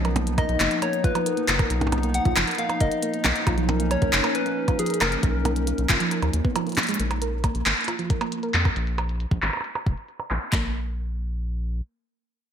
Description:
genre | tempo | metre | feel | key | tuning
IDM | 136 BPM | 4/4 | straight | Bb phrygian | A4 = 440 Hz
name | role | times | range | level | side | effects
hollow soft pad | sustained chords | 0.0-7.0 s | F3 to D#4 | -30 LUFS | left 2 dB | chorus
soft round pluck | arpeggios | 0.0-10.7 s | F3 to A#4 | -30 LUFS | right 4 dB | chorus, digital delay
rubbery square bass | bass | 0.0-11.8 s | F1 to F2 | -26 LUFS | equal | tube saturation
glitchy drum kit | drums | 0.0-10.5 s | handclaps, hi-hat, percussion blips | -25 LUFS | right 1 dB | low-pass filter on hats, low-pass filter on perc, low-pass filter on snare, low-pass filter on room, gated reverb
soft struck synth lead | melody | 0.4-6.8 s | Ab4 to F#5 | -28 LUFS | left 2 dB | chorus, ping-pong delay
glitchy drum kit | drums | 0.4-10.6 s | handclaps, kick drum | -24 LUFS | equal | none
room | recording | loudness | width
moderate lush hall reverb, RT60 1.7 s, digital ambience | bright 1980s-style digital production | -21 LUFS | side -8 dB against mid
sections
0.0-7.0 A section; 7.0-10.5 B section; 10.5-12.5 C section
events
drum fill 6.8; filter sweep on drum 7.0-10.5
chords
0.0 Bmaj7; 7.0 Bb5; 10.5 N.C.

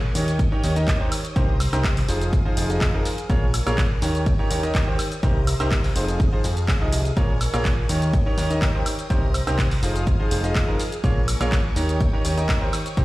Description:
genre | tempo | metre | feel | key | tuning
piano house | 124 BPM | 4/4 | straight | unclear | A4 = 444 Hz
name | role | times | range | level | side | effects
string machine, violins | sustained chords | 0.0-13.0 s | Ab4 to Eb6 | -34 LUFS | equal | ensemble chorus, sidechain pumping
fat analog bass | bass | 0.0-13.0 s | F1 to F2 | -24 LUFS | equal | tube saturation, sidechain pumping
clear concert grand piano | riff | 0.1-13.0 s | C3 to Eb5 | -26 LUFS | right 1 dB | sidechain pumping, dub echo
punchy analog drum machine | drums | 0.2-13.0 s | handclaps, hi-hat, shaker, woodblock | -30 LUFS | equal | none
electronic kick drum | drums | 0.4-13.0 s | none | -22 LUFS | equal | none
room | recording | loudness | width
digital ambience | played on a big sound system in a bare room, large studio reverb | -19 LUFS | side -18 dB against mid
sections
0.0-13.0 A section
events
none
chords
0.1 Eb7; 1.4 Cm7; 2.1 Fm7; 3.3 Bbm7; 4.0 Eb7; 5.2 Cm7; 6.0 Fm7; 7.2 Bbm7; 7.9 Eb7; 9.1 Cm7; 9.8 Fm7; 11.0 Bbm7; 11.8 Eb7

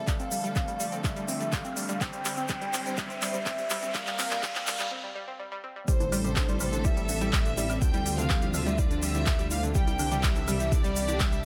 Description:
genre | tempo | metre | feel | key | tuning
progressive house | 124 BPM | 4/4 | straight | unclear | A4 = 440 Hz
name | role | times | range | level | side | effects
warm velvety synth lead | melody | 0.0-11.4 s | C5 to G5 | -37 LUFS | equal | chorus, phaser, sidechain pumping, delay
warm symphonic string section | sustained chords | 0.0-11.4 s | C3 to C5 | -40 LUFS | equal | sidechain pumping
riser | sound effects | 0.2-4.9 s | none | -42 LUFS | equal | none
glassy wavetable pluck | arpeggios | 0.1-11.4 s | D3 to G4 | -37 LUFS | equal | chorus, sidechain pumping, dub echo
deep house drum kit | drums | 0.1-11.4 s | handclaps, hi-hat | -36 LUFS | equal | small room reverb
electronic kick drum | drums | 0.1-11.3 s | none | -30 LUFS | equal | small room reverb
egg shaker | percussion | 0.1-11.4 s | none | -41 LUFS | equal | none
clear chamber violin section | second line | 5.9-11.4 s | C5 to G5 | -41 LUFS | equal | sidechain pumping, dub echo
dark detuned saw bass | bass | 5.9-11.4 s | A1 to D2 | -34 LUFS | equal | tube saturation, sidechain pumping
electronic congas, woodblock and toms | percussion | 6.0-11.2 s | none | -41 LUFS | equal | overdrive, sidechain pumping on perc, small room reverb, sidechain pumping on toms
room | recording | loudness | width
light reverb | high-pass filter | -28 LUFS | mono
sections
0.0-5.9 A section; 5.9-11.4 B section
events
build-up 0.0-5.9; drum fill 0.0-4.9; filter sweep 0.0-5.9; riser 0.2-4.9; break 4.9-5.9; drop 5.9-11.4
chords
0.1 Dmadd9; 2.0 Cadd9; 3.9 Gm; 5.9 Am; 7.8 Dmadd9; 9.8 Cadd9

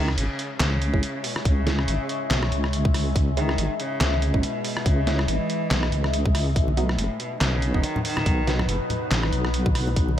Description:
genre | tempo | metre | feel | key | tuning
deep dubstep | 141 BPM | 4/4 | swing 57% on 16ths, half-time | C# minor | A4 = 440 Hz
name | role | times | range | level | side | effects
clear cello | melody | 0.0-9.3 s | A2 to E3 | -31 LUFS | equal | dub echo
deep dark ambient pad | sustained chords | 0.4-10.2 s | F#3 to E5 | -30 LUFS | left 2 dB | chorus, built-in reverb
filtered dub chord stab | stabs | 0.0-8.6 s | F#3 to E4 | -34 LUFS | right 4 dB | none
deep soft wobble bass | bass | 0.0-10.2 s | F#1 to C#2 | -24 LUFS | equal | chorus, tube saturation
trip hop sampler-style drum kit | drums | 0.1-10.1 s | handclaps, hi-hat, rim click, snare drum | -28 LUFS | equal | studio reverb
electronic kick drum | drums | 0.9-10.1 s | none | -22 LUFS | equal | studio reverb
congas and bongos | percussion | 6.7-10.2 s | none | -31 LUFS | left 1 dB | none
room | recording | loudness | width
little or no reverb | none | -21 LUFS | side -11 dB against mid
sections
0.0-10.2 A section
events
none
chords
0.0 C#m; 6.6 B

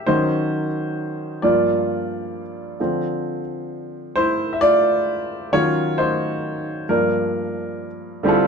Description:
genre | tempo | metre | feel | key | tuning
R&B | 44 BPM (dotted quarters) | 6/8 | straight | unclear | A4 = 439 Hz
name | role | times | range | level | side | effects
clear baby grand piano | solo | 0.0-8.5 s | G2 to E5 | -19 LUFS | equal | none
room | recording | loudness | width
moderate studio reverb, RT60 0.7 s | band playing live in one room | -19 LUFS | side -6 dB against mid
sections
0.0-8.2 A section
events
grand piano solo 0.0-8.2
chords
0.1 Ebm7; 1.4 Gm7; 2.8 Dm9; 5.5 Ebm9; 6.9 Gm7

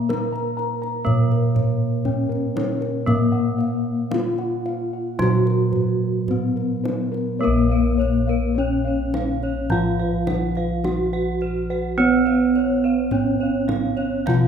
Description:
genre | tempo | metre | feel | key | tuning
Javanese gamelan | 52-63 BPM | 4/4 | straight | Bb pelog | A4 = 444 Hz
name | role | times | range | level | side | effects
gamelan-type bronze metallophone | melody | 0.0-14.5 s | Bb3 to Bb4 | -24 LUFS | left 3 dB | none
gamelan-type bronze metallophone | accompaniment | 0.0-14.5 s | F3-30c to Cb4+20c | -25 LUFS | right 6 dB | none
gamelan-type bossed gongs | bass | 0.0-14.5 s | Bb1 to Cb5+20c | -25 LUFS | equal | none
gamelan-type bossed gongs | arpeggios | 0.1-14.5 s | Bb4 to Bb5 | -30 LUFS | left 6 dB | none
kendang | percussion | 0.1-14.5 s | none | -28 LUFS | right 1 dB | none
gamelan-type bronze metallophone | arpeggios | 7.4-14.5 s | Bb4 to Gb5-20c | -30 LUFS | right 2 dB | none
room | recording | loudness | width
moderate recital hall reverb, RT60 1.5 s | minimal, uncompressed stereo recording | -19 LUFS | side -7 dB against mid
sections
0.0-7.4 A section; 7.4-14.5 B section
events
none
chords
none

